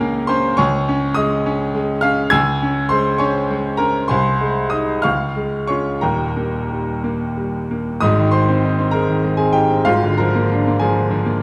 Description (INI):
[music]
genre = classical, virtuoso piano study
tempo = 59-70 BPM (dotted quarters)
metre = 6/8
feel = rubato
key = Ab major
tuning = A4 = 441 Hz
[part]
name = bright baby grand piano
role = solo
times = 0.0-11.4 s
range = Eb1 to Ab6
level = -18 LUFS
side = equal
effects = none
[sound]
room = moderate recital hall reverb, RT60 1.8 s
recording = dark, warm production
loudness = -18 LUFS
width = mono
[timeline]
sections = 0.0-8.0 A section; 8.0-11.4 B section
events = none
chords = 0.0 Bbm/Db; 0.6 Db; 2.3 Dbm; 4.1 Ab/C; 5.0 Db; 6.0 Eb; 8.0 Ab; 9.9 Bb7/Ab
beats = | 0.58 1.45 | 2.33 3.21 | 4.11 5.05 | 6.02 7.03 | 8.02 8.94 | 9.86 10.81